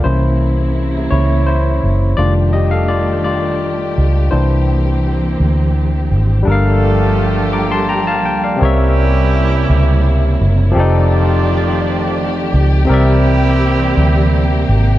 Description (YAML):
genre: slow six-eight R&B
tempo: 56 BPM (dotted quarters)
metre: 6/8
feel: straight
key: unclear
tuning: A4 = 440 Hz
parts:
  - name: barky tine electric piano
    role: accompaniment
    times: 0.0-15.0 s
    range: C3 to D6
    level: -17 LUFS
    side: left 2 dB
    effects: overdrive
  - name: dark studio string section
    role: sustained chords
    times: 0.0-15.0 s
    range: C3 to D5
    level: -22 LUFS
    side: right 3 dB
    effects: none
  - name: vintage muted fingered electric bass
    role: bass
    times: 0.1-15.0 s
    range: F1 to D2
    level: -14 LUFS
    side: equal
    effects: none
  - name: clear horn section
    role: stabs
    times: 6.5-14.6 s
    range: F3 to A4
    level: -22 LUFS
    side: right 4 dB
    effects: none
room: light reverb, studio ambience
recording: dark, warm production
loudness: -12 LUFS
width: side -14 dB against mid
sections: 0.0-6.5 A section; 6.5-15.0 B section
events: tine electric piano solo 0.0-6.5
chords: 0.0 C7b9; 2.2 F13; 4.3 C7; 6.5 Gm9; 8.6 C7b9; 10.7 F13; 12.9 C7